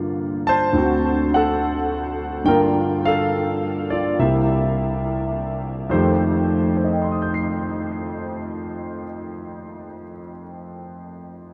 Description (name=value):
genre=solo jazz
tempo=70 BPM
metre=4/4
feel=swing 69% on 8ths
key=F mixolydian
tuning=A4 = 440 Hz
part: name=warm concert grand piano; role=solo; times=0.0-11.5 s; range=C2 to C7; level=-22 LUFS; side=equal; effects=analog chorus, analog delay
room=wet huge ambient reverb, RT60 7.8 s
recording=dreamy mix soaked in reverb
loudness=-21 LUFS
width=mono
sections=0.0-5.9 A section; 5.9-9.3 B section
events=none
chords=0.0 Gm7; 0.7 D7; 2.5 Gm7; 4.2 C7; 5.9 F9